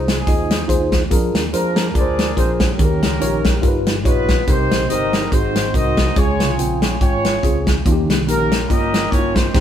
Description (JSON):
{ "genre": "uptempo gospel", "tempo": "142 BPM", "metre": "4/4", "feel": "swing 56% on 8ths", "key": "unclear", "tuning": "A4 = 440 Hz", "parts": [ { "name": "mellow horn section", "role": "melody", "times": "0.0-9.6 s", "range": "Ab3 to Eb5", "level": "-22 LUFS", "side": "equal", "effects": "none" }, { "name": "mellow tine electric piano", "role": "accompaniment", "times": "0.0-9.6 s", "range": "G2 to G5", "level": "-21 LUFS", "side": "equal", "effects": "fast stereo tremolo" }, { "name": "fingered electric bass", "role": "bass", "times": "0.0-9.6 s", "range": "G1 to F2", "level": "-24 LUFS", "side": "equal", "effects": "none" }, { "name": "natural country drum kit", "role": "drums", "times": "0.1-9.6 s", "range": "crash cymbal, hi-hat, kick drum, snare drum", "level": "-18 LUFS", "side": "equal", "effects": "none" } ], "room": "moderate stone room reverb, RT60 1.1 s", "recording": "band playing live in one room", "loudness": "-15 LUFS", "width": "side -10 dB against mid", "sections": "0.0-9.6 A section", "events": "none", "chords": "0.0 Fm7; 1.1 Bb7; 2.8 Eb7; 3.6 G7alt; 4.5 Cm7; 5.3 Ab7; 6.2 Dbmaj7; 7.9 Eb7", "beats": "0.27 0.69 | 1.11 1.53 1.96 2.38 | 2.80 3.22 3.64 4.06 | 4.48 4.90 5.32 5.75 | 6.17 6.59 7.01 7.43 | 7.86 8.28 8.70 9.12 | 9.55" }